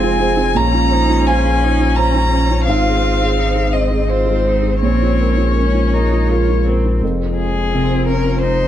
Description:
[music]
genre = neoclassical piano and strings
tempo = 85 BPM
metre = 3/4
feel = rubato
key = Bb minor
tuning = A4 = 438 Hz
[part]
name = rich violin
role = melody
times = 0.0-8.7 s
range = Ab4 to Bb5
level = -20 LUFS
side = left 5 dB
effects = none
[part]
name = clear cello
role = second line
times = 0.0-8.7 s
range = C4 to F4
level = -26 LUFS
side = right 4 dB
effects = none
[part]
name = felt-muted upright piano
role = accompaniment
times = 0.0-8.7 s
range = F2 to Bb5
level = -19 LUFS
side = right 4 dB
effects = none
[part]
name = rich viola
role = accompaniment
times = 0.0-8.7 s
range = C4 to F4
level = -24 LUFS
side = right 2 dB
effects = none
[part]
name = deep dark ambient pad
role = sustained chords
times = 0.0-8.7 s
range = Ab3 to F5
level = -26 LUFS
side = left 1 dB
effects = chorus, built-in reverb
[part]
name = pure sine sub bass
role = bass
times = 0.0-8.7 s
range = F1 to Bb1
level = -18 LUFS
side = left 1 dB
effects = none
[sound]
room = light reverb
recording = dark, warm production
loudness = -13 LUFS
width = side -11 dB against mid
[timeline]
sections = 0.0-7.0 A section; 7.0-8.7 B section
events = none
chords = 0.0 Fm; 0.6 Bbmadd9; 2.7 Ab; 4.8 Bbmadd9; 7.0 Fm

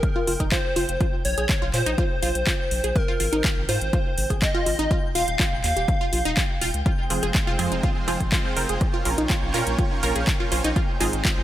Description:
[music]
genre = progressive house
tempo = 123 BPM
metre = 4/4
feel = straight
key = unclear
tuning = A4 = 440 Hz
[part]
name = plucky unison lead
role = melody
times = 0.0-6.8 s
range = Bb4 to F5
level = -27 LUFS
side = equal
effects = sidechain pumping, dub echo
[part]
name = electronic kick drum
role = drums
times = 0.0-11.4 s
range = none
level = -24 LUFS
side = equal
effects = overdrive
[part]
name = house drum kit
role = drums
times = 0.0-11.4 s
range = handclaps, hi-hat, rim click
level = -28 LUFS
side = equal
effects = overdrive, sidechain pumping on hats, sidechain pumping on cymbals
[part]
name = twinkling granular texture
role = texture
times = 0.0-11.4 s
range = G5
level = -36 LUFS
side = right 2 dB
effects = built-in reverb, sidechain pumping
[part]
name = wide unison pluck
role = arpeggios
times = 0.2-11.3 s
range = Eb4 to Ab4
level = -29 LUFS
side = equal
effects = sidechain pumping, tape echo
[part]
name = saturated sub bass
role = bass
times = 0.3-11.4 s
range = Eb1 to Bb2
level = -28 LUFS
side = equal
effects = sidechain pumping
[part]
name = supersaw pad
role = sustained chords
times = 6.9-11.4 s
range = Ab3 to Db5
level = -31 LUFS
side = right 1 dB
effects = sidechain pumping
[part]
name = wide unison pluck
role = stabs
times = 7.1-11.2 s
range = Ab2 to C5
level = -28 LUFS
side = right 3 dB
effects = analog chorus, sidechain pumping, tape echo
[sound]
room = light reverb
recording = none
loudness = -20 LUFS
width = side -13 dB against mid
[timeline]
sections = 0.0-11.4 A section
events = none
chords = 0.0 F5; 1.0 Bbm; 3.0 Ab; 4.9 Eb; 6.9 Fm; 8.8 Bbm; 10.8 Ab

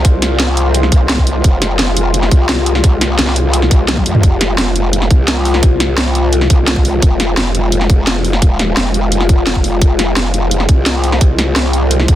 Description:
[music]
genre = dark technical drum and bass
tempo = 172 BPM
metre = 4/4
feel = straight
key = F minor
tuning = A4 = 442 Hz
[part]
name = deep dark ambient pad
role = sustained chords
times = 0.0-12.2 s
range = Ab3 to F5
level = -18 LUFS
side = left 2 dB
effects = chorus, built-in reverb, sidechain pumping
[part]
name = growl bass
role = bass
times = 0.0-12.2 s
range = Eb1 to F2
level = -15 LUFS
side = equal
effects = chorus, overdrive, sidechain pumping
[part]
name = drum and bass drum kit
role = drums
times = 0.0-12.2 s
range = hi-hat, snare drum, toms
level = -16 LUFS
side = equal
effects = none
[part]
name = electronic kick drum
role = drums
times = 0.0-12.2 s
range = none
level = -10 LUFS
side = equal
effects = none
[sound]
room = light reverb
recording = dense, heavily limited modern master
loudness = -10 LUFS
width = side -13 dB against mid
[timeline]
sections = 0.0-12.2 A section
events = drum fill 3.9-4.2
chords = 0.0 Fm

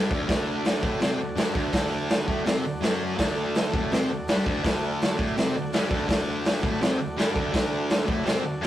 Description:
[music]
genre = garage rock duo or trio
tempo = 166 BPM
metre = 4/4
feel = straight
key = D mixolydian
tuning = A4 = 440 Hz
[part]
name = overdriven combo organ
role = sustained chords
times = 0.0-8.7 s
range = F#4 to E5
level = -34 LUFS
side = right 1 dB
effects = none
[part]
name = fuzz guitar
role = riff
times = 0.0-8.7 s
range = D2 to C4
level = -27 LUFS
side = equal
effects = distortion
[part]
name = raw garage drum kit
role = drums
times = 0.1-8.7 s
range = hi-hat, kick drum, snare drum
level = -25 LUFS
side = equal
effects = none
[sound]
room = light reverb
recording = rough rehearsal-room recording, warm saturation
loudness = -23 LUFS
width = side -12 dB against mid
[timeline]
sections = 0.0-8.7 A section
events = transistor combo organ fill 8.4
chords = 0.0 D

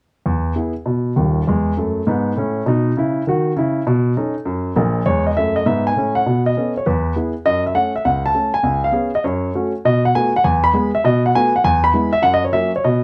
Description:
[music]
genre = jazz, stride piano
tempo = 200 BPM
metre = 4/4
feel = swing 65% on 8ths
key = E major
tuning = A4 = 437 Hz
[part]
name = warm baby grand piano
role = solo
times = 0.3-13.0 s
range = D#1 to B5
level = -18 LUFS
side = equal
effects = none
[sound]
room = moderate club reverb, RT60 0.5 s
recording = none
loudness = -18 LUFS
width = mono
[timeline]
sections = 0.3-5.1 A section; 5.1-13.0 B section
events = none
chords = 0.3 E; 1.5 B5/E; 2.7 E5/B; 3.9 B9; 5.1 E; 6.3 B9; 6.9 E; 7.5 F#m; 8.7 C#7; 9.2 F#m; 9.8 B5; 10.4 E; 11.0 B5; 11.6 E; 12.2 F#

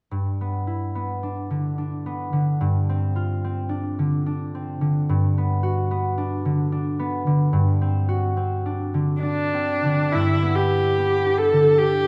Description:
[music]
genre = classical, impressionist duo for viola and harp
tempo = 73 BPM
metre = 3/4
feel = rubato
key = G major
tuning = A4 = 441 Hz
[part]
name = concert harp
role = accompaniment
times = 0.1-12.1 s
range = G2 to F#4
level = -24 LUFS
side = equal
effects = none
[part]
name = rich viola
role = melody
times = 9.2-12.1 s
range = D4 to A4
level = -21 LUFS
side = equal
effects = none
[sound]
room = wet scoring stage reverb, RT60 2.0 s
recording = none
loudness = -23 LUFS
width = mono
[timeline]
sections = 0.1-10.1 A section; 10.1-12.1 B section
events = none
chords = 0.1 G6; 2.6 Fsus2/G; 5.1 Gmaj7; 7.5 D6/G; 10.1 G6

